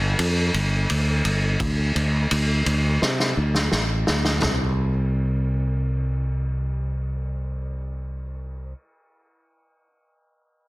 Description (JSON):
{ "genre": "rock, shoegaze and dream pop", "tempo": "85 BPM", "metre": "4/4", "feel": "straight", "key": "unclear", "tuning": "A4 = 439 Hz", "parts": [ { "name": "sustaining fretless electric bass", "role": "bass", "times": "0.0-8.7 s", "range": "G1 to C3", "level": "-22 LUFS", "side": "equal", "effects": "none" }, { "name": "loose indie drum kit", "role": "drums", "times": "0.2-4.6 s", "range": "kick drum, ride cymbal, snare drum, toms", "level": "-24 LUFS", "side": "equal", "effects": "none" } ], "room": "little or no reverb", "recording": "dense, heavily limited modern master", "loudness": "-20 LUFS", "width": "side -21 dB against mid", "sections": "0.0-4.4 A section; 4.4-7.3 B section", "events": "drum fill 3.0-4.4", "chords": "none", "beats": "0.19 0.89 | 1.60 2.31 3.02 3.72 | 4.43 5.14 5.84 6.55" }